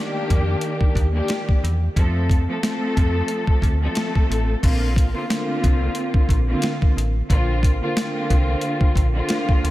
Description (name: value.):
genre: hip hop, boom-bap hip-hop.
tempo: 90 BPM.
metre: 4/4.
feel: swing 55% on 16ths.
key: Bb major.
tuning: A4 = 440 Hz.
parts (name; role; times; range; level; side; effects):
warm studio string section; accompaniment; 0.0-9.7 s; D3 to A4; -24 LUFS; equal; cassette tape, high-pass filter, low-pass filter.
metallic FM bass; bass; 0.3-9.7 s; A1 to F2; -21 LUFS; equal; none.
boom bap sampler-style drum kit; drums; 0.3-9.7 s; crash cymbal, hi-hat, kick drum, snare drum; -20 LUFS; equal; none.
room: moderate church reverb, RT60 3.0 s.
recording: dreamy mix soaked in reverb.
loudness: -18 LUFS.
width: side -16 dB against mid.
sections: 0.0-4.6 A section; 4.6-9.7 B section.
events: none.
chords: 0.0 Ebmaj7; 2.0 F; 4.6 Bbadd9.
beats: 0.63 1.30 | 1.96 2.63 3.30 3.96 | 4.63 5.30 5.96 6.63 | 7.30 7.96 8.63 9.30.